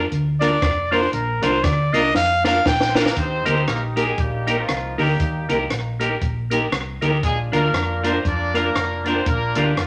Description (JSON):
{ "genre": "ska", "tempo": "118 BPM", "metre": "4/4", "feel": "swing 58% on 8ths", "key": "Eb major", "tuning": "A4 = 440 Hz", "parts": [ { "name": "clean electric guitar", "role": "accompaniment", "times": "0.0-9.7 s", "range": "D4 to Bb4", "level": "-27 LUFS", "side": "equal", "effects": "slapback echo" }, { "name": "hollow-body short-scale fingered electric bass", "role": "bass", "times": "0.0-9.9 s", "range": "F1 to F2", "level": "-27 LUFS", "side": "equal", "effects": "none" }, { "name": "compact cocktail drum kit", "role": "drums", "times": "0.1-9.9 s", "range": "hi-hat, kick drum, rim click, snare drum", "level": "-26 LUFS", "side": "equal", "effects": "slapback echo" }, { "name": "warm trumpet", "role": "melody", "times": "0.4-2.9 s", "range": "Bb4 to G5", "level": "-22 LUFS", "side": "equal", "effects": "none" }, { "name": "percussive tonewheel organ", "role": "stabs", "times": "0.4-9.7 s", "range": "Bb3 to Bb4", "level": "-28 LUFS", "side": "equal", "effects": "chorus vibrato, slow rotary speaker" }, { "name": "clear horn section", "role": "melody", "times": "2.9-9.9 s", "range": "F3 to D5", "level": "-27 LUFS", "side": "equal", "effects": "none" } ], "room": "moderate large studio reverb, RT60 0.9 s", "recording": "none", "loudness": "-20 LUFS", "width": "mono", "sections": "0.0-3.2 A section; 3.2-9.9 B section", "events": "trumpet solo 0.0-3.2; drum fill 2.2-3.2", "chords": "0.0 Bb; 3.2 Eb; 7.2 Bb", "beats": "0.12 0.63 | 1.14 1.64 2.15 2.66 | 3.17 3.67 4.18 4.69 | 5.20 5.71 6.21 6.72 | 7.23 7.74 8.25 8.76 | 9.26 9.77" }